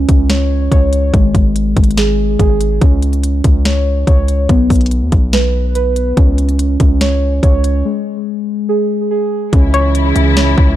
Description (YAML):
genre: hip hop, trap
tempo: 143 BPM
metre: 4/4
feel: half-time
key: C# minor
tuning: A4 = 440 Hz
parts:
  - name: muted felt-like synth keys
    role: arpeggios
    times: 0.0-10.8 s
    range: G#3 to C#5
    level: -16 LUFS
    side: right 2 dB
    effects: chorus, tape echo
  - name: hard-hitting 808-style bass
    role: bass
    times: 0.0-10.8 s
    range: G#1 to D#2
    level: -14 LUFS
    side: equal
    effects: none
  - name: trap drum kit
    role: drums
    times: 0.1-10.7 s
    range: hi-hat, kick drum, snare drum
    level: -12 LUFS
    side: equal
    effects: none
  - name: dark studio string section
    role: sustained chords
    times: 9.5-10.8 s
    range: C#3 to E4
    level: -17 LUFS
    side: left 4 dB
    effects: none
  - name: hollow square pluck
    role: second line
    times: 9.7-10.8 s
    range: C#5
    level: -18 LUFS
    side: left 3 dB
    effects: chorus, tape echo
room: little or no reverb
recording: dark, warm production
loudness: -11 LUFS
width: side -13 dB against mid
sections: 0.0-9.5 A section; 9.5-10.8 B section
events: break 7.8-9.5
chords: 0.0 N.C.; 9.5 C#m